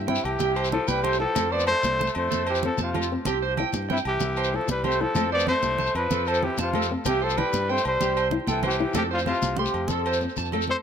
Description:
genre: highlife guitar band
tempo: 126 BPM (dotted quarters)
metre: 12/8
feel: straight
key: C major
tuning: A4 = 439 Hz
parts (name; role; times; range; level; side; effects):
- flamenco guitar; accompaniment; 0.0-10.8 s; A3 to E4; -32 LUFS; left 4 dB; none
- fingered electric bass; bass; 0.0-10.7 s; C2 to G2; -31 LUFS; equal; none
- congas; percussion; 0.0-10.8 s; none; -32 LUFS; right 3 dB; none
- breathy trumpet; melody; 0.1-10.8 s; E4 to D5; -26 LUFS; equal; tape echo
- raspy tenor saxophone; second line; 0.1-10.8 s; C3 to A4; -33 LUFS; left 7 dB; none
- electric guitar at the edge of break-up; arpeggios; 0.1-10.6 s; F4 to C6; -29 LUFS; right 6 dB; none
- shekere; percussion; 0.2-10.7 s; none; -34 LUFS; left 6 dB; none
- agogo bells; percussion; 0.3-10.7 s; none; -36 LUFS; right 2 dB; none
room: moderate spring reverb, RT60 1.8 s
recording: none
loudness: -22 LUFS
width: side -8 dB against mid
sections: 0.0-10.8 A section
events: drum fill 10.2-10.8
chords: 0.0 C; 1.4 F; 3.3 C; 5.2 F; 7.1 C; 9.0 F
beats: 0.40 0.88 | 1.35 1.83 2.31 2.78 | 3.26 3.73 4.21 4.68 | 5.16 5.63 6.11 6.58 | 7.06 7.53 8.00 8.48 | 8.95 9.42 9.90 10.37

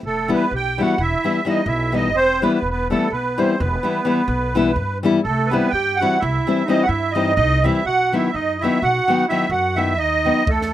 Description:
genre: balkan folk, Balkan wedding band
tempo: 252 BPM (eighths)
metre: 11/8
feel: straight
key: unclear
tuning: A4 = 440 Hz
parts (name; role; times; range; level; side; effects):
- upright bass; bass; 0.0-10.7 s; E1 to G2; -24 LUFS; equal; none
- musette accordion; melody; 0.1-10.7 s; A4 to G5; -20 LUFS; right 3 dB; none
- clear clarinet; second line; 0.1-10.7 s; A3 to G4; -26 LUFS; right 3 dB; none
- nylon-string guitar; accompaniment; 0.3-10.4 s; D#3 to E4; -20 LUFS; left 4 dB; none
- compact cocktail drum kit; percussion; 10.5-10.7 s; kick drum, snare drum; -22 LUFS; equal; none
room: small room ambience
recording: rough home demo mix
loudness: -16 LUFS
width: side -12 dB against mid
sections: 0.0-10.7 A section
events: none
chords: 0.0 Em; 5.2 C; 7.9 B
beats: | 0.01 0.25 0.49 0.73 0.96 1.20 1.44 1.68 1.91 2.15 2.39 | 2.63 2.87 3.10 3.34 3.58 3.82 4.05 4.29 4.53 4.77 5.00 | 5.24 5.48 5.72 5.96 6.19 6.43 6.67 6.91 7.14 7.38 7.62 | 7.86 8.10 8.33 8.57 8.81 9.05 9.29 9.52 9.76 10.00 10.24 | 10.48 10.71

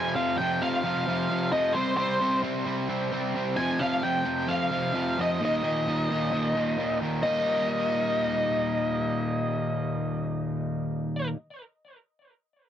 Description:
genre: rock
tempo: 132 BPM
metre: 4/4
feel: straight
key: Eb major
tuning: A4 = 438 Hz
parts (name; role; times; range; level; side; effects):
- octave-fuzz lead guitar; melody; 0.0-11.3 s; C5 to Ab5; -28 LUFS; left 1 dB; distortion, tape echo
- crunchy overdriven guitar; riff; 0.0-11.4 s; Eb2 to Eb4; -27 LUFS; equal; none
room: light reverb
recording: worn, warbling old tape, cassette tape, warbly pitch drift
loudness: -25 LUFS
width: side -10 dB against mid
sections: 0.0-7.2 A section; 7.2-10.9 B section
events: none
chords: 0.0 F5; 1.8 C5; 3.6 F5; 5.4 Eb5; 7.2 Eb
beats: 0.39 0.85 1.30 | 1.76 2.21 2.67 3.12 | 3.58 4.03 4.49 4.94 | 5.40 5.86 6.31 6.77 | 7.22 7.68 8.14 8.59 | 9.05 9.51 9.96 10.42

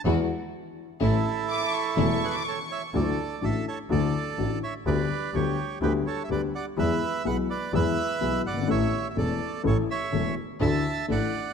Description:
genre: tango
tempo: 125 BPM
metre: 4/4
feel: rubato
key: D major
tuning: A4 = 440 Hz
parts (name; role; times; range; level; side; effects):
- dark upright piano; accompaniment; 0.0-11.3 s; E1 to A4; -27 LUFS; left 5 dB; none
- rich chamber string section; stabs; 0.0-2.2, 10.6-11.3 s; G#3 to F#4; -37 LUFS; equal; none
- clear double bass; bass; 0.0-11.3 s; E1 to E2; -29 LUFS; right 2 dB; none
- bandoneon; melody; 1.0-11.5 s; E4 to A5; -30 LUFS; right 6 dB; none
- warm studio violin section; second line; 1.5-2.9 s; C#6 to D6; -31 LUFS; left 2 dB; none
room: moderate concert hall reverb, RT60 2.4 s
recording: none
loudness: -24 LUFS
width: side -6 dB against mid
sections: 0.0-2.9 A section; 2.9-11.5 B section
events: none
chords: 0.0 Eadd9; 1.0 A; 2.9 Dadd9; 4.9 G/D; 6.8 E; 8.7 A; 10.6 Dsus2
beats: 0.05 0.53 | 1.01 1.49 1.97 2.46 | 2.94 3.42 3.90 4.38 | 4.86 5.34 5.81 6.29 | 6.77 7.25 7.73 8.21 | 8.68 9.16 9.64 10.13 | 10.61 11.09

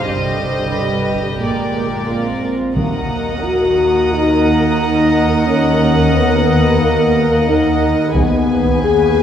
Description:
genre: cinematic, suspense film score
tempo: 89 BPM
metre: 4/4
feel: straight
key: Eb minor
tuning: A4 = 439 Hz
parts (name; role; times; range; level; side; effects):
- rich studio violin section; melody; 0.0-9.2 s; D5 to G#5; -24 LUFS; equal; none
- warm symphonic violin section; second line; 0.0-9.2 s; F4 to Eb5; -24 LUFS; equal; none
- dark symphonic viola section; accompaniment; 0.0-9.2 s; D3 to Bb4; -23 LUFS; right 1 dB; none
- warm symphonic cello section; bass; 0.0-9.2 s; Eb2 to Bb2; -23 LUFS; right 5 dB; none
- swarming drone; drone; 0.0-9.2 s; G1 to Eb2; -22 LUFS; left 1 dB; built-in reverb
- dark symphonic double bass section; bass; 0.1-9.2 s; G1 to Eb2; -24 LUFS; right 3 dB; none
- mellow French horn section; sustained chords; 2.1-9.2 s; Bb3 to G#4; -15 LUFS; left 2 dB; none
- taiko ensemble; drums; 2.8-4.1, 8.1-9.2 s; none; -22 LUFS; equal; none
- timpani; percussion; 2.8-3.7, 8.2-9.1 s; Eb3; -24 LUFS; equal; none
- warm studio violin section; texture; 2.8-7.8 s; Bb5 to Eb6; -26 LUFS; equal; none
room: wet concert hall reverb, RT60 2.3 s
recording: recorded in a church or concert hall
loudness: -13 LUFS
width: side -9 dB against mid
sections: 0.0-2.8 A section; 2.8-9.2 B section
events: none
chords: 0.1 G; 1.4 Bb7; 2.8 Ebm; 8.2 E/Eb (rootless)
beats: | 0.07 0.74 1.42 2.09 | 2.77 3.44 4.11 4.79 | 5.46 6.14 6.81 7.48 | 8.16 8.83

